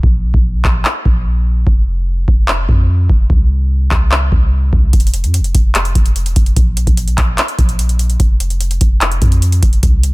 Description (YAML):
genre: hip hop, trap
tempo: 147 BPM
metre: 4/4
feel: half-time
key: unclear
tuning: A4 = 444 Hz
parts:
  - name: warm 808-style bass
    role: bass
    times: 0.0-10.1 s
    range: E1 to F2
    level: -14 LUFS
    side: equal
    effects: none
  - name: booming analog drum machine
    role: drums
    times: 0.0-10.1 s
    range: handclaps, hi-hat, kick drum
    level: -12 LUFS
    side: equal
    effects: none
room: digital ambience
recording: dense, heavily limited modern master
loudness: -11 LUFS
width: side -22 dB against mid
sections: 0.0-10.1 A section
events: break 0.0-4.9; hi-hats muted 3.3-4.9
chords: none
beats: | 0.03 0.44 0.85 1.26 | 1.67 2.08 2.48 2.89 | 3.30 3.71 4.12 4.52 | 4.93 5.34 5.75 6.16 | 6.57 6.97 7.38 7.79 | 8.20 8.61 9.01 9.42 | 9.83